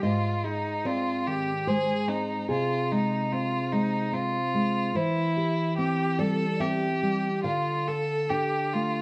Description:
romantic duo for violin and classical guitar; 73 BPM; 3/4; rubato; C major from 5.0 s; A4 = 440 Hz
rich violin; melody; 0.0-9.0 s; Eb4 to A4; -31 LUFS; equal; slapback echo
nylon-string guitar; accompaniment; 0.0-9.0 s; Ab2 to G5; -29 LUFS; equal
moderate recital hall reverb, RT60 1.4 s; close, detailed microphones; -27 LUFS; mono
0.0-9.0 A section
0.0 Ab; 2.5 Ab/C; 5.0 C/E; 7.4 Dm

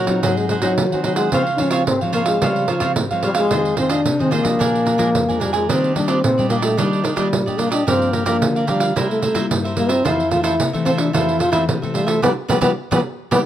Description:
samba and choro; 110 BPM; 4/4; straight; A4 = 439 Hz
breathy trombone; melody; 0.0-13.4 s; Eb3 to F4; -19 LUFS; left 1 dB
cavaquinho; accompaniment; 0.0-13.4 s; D4 to Ab5; -24 LUFS; right 4 dB
nylon-string guitar; accompaniment; 0.0-13.4 s; F2 to E4; -23 LUFS; left 4 dB
pandeiro; percussion; 0.1-13.4 s; -22 LUFS; right 4 dB
light reverb; close, detailed microphones; -16 LUFS; side -11 dB against mid
0.0-13.5 A section
band accent 12.2-13.5
0.2 Ab7; 1.3 Dbmaj7; 3.5 Fm7; 4.6 Bb7; 5.7 Ebmaj7; 7.9 Gm7; 9.0 C7; 10.1 Fmaj7; 12.2 G7

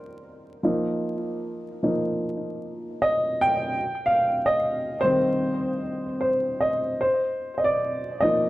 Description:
hip hop; 75 BPM; 4/4; swing 61% on 16ths; A4 = 440 Hz
dark upright piano; solo; 0.0-8.5 s; Eb3 to G5; -22 LUFS; equal; cassette tape, low-pass filter, tape echo
wet studio reverb, RT60 0.6 s; dark, warm production, vinyl crackle; -22 LUFS; side -17 dB against mid
0.0-8.5 A section
upright piano solo 0.0-8.5
0.0 Eb6; 0.6 F7sus4; 3.8 Eb6; 7.0 F7sus4

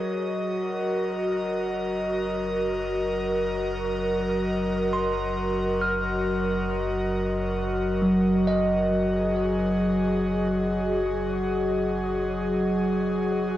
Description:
ambient; free time; A4 = 442 Hz
airy breathy pad; sustained chords; 0.0-13.6 s; Gb3 to Eb5; -25 LUFS; equal; chorus
bell-like tine electric piano; arpeggios; 0.0-13.6 s; Gb3 to F6; -29 LUFS; equal; auto-pan, analog delay
round analog bass; bass; 0.0-13.6 s; Gb1; -35 LUFS; equal
wet studio reverb, RT60 0.5 s; home recording on cassette; -23 LUFS; side -13 dB against mid
0.0-13.6 A section
0.1 Ab9/Gb

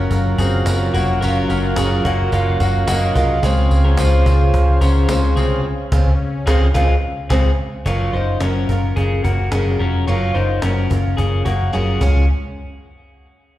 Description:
jangly indie pop; 108 BPM; 4/4; straight; A4 = 440 Hz
overdriven combo organ; accompaniment; 0.0-5.6 s; Db4 to Eb5; -23 LUFS; right 2 dB; spring reverb, slapback echo
picked twelve-string acoustic guitar; accompaniment; 0.0-12.2 s; Db3 to Bb4; -26 LUFS; right 4 dB; slapback echo
warm analog pad; sustained chords; 0.0-7.8 s; Db3 to F5; -26 LUFS; equal; chorus
electric guitar through a small old amp; arpeggios; 0.0-12.3 s; Ab3 to Db5; -22 LUFS; left 3 dB; tape echo, slapback echo
vintage muted picked electric bass; bass; 0.0-12.3 s; F1 to Db2; -16 LUFS; equal
cajon; drums; 0.1-12.1 s; -26 LUFS; equal
tambourine; percussion; 0.1-5.5 s; -34 LUFS; left 1 dB
light reverb; live gig heard through the venue's PA, recital hall reverb; -14 LUFS; side -14 dB against mid
0.0-7.9 A section; 7.9-12.3 B section; 12.3-13.6 C section
transistor combo organ fill 2.6-3.4; band accent 5.6-7.9; drum fill 11.7-12.3
0.0 Gbmaj7; 3.4 Dbmaj7; 7.9 Gbmaj7; 12.0 Db; 12.3 N.C.

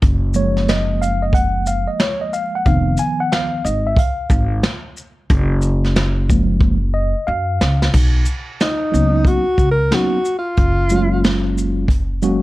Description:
hip hop, jazz-hop; 91 BPM; 4/4; swing 64% on 16ths; F# major; A4 = 440 Hz
upright bass; bass; 0.0-12.4 s; F1 to F#2; -18 LUFS; equal
vintage brush drum kit; drums; 0.0-12.4 s; crash cymbal, hi-hat, kick drum, shaker, snare drum; -18 LUFS; equal
mellow tine electric piano; accompaniment; 0.3-12.4 s; Eb3 to Ab5; -19 LUFS; equal; medium stereo tremolo
mellow alto saxophone; melody; 8.6-11.3 s; D#4 to A#4; -18 LUFS; equal
light reverb; dark, warm production; -15 LUFS; side -18 dB against mid
0.0-7.9 A section; 7.9-12.4 A section
tine electric piano solo 0.0-7.9; drum fill 6.6-7.9; alto saxophone solo 7.9-12.4
0.0 F#maj7; 2.7 Fm7b5; 5.3 F#maj7; 7.9 Bmaj9; 10.6 F#maj7

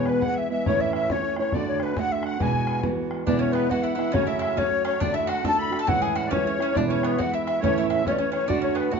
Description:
celtic folk, Celtic polka; 138 BPM; 2/4; swing 62% on 8ths; E mixolydian; A4 = 440 Hz
wooden flute; melody; 0.0-9.0 s; B4 to B5; -26 LUFS; left 4 dB; plate reverb
musette accordion; second line; 0.0-9.0 s; B4 to B5; -33 LUFS; left 1 dB
fingerpicked acoustic archtop guitar; accompaniment; 0.0-9.0 s; E2 to G#4; -25 LUFS; right 4 dB
bodhran; percussion; 0.1-9.0 s; -31 LUFS; left 2 dB
mandolin; second line; 3.3-9.0 s; B3 to A4; -32 LUFS; right 2 dB
wet small room reverb, RT60 0.5 s; nothing above 7.6 kHz; -22 LUFS; side -6 dB against mid
0.0-3.3 A section; 3.3-9.0 A section
0.0 E; 0.7 A; 1.5 D; 2.4 Eadd9; 3.3 E; 4.1 F#m; 5.0 D; 5.9 Amaj7; 6.8 E; 7.6 A; 8.5 D

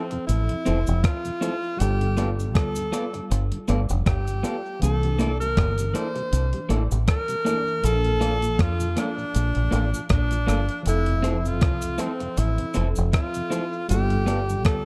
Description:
lovers rock reggae; 79 BPM; 4/4; swing 55% on 16ths; F major; A4 = 435 Hz
clear tenor saxophone; melody; 0.0-14.8 s; C4 to C5; -31 LUFS; equal; tape echo
tine electric piano; accompaniment; 0.0-14.8 s; E3 to A5; -35 LUFS; equal; phaser, tape echo
mellow tonewheel organ; accompaniment; 0.1-14.6 s; F2 to F4; -38 LUFS; equal
electric guitar through a small old amp; stabs; 0.1-14.4 s; Bb3 to D5; -33 LUFS; equal; tape echo
clean 12-bit digital drum machine; drums; 0.1-14.8 s; hi-hat, kick drum, rim click; -26 LUFS; equal
deep dub fingered electric bass; bass; 0.3-14.8 s; F1 to F2; -26 LUFS; equal
cabasa; percussion; 0.3-14.6 s; -43 LUFS; equal; tape echo
light reverb; dark, warm production; -24 LUFS; mono
0.0-14.8 A section
0.0 Fmaj7; 1.8 G9; 4.8 C13; 7.8 Bbmaj7; 10.9 Fmaj7; 13.9 G9

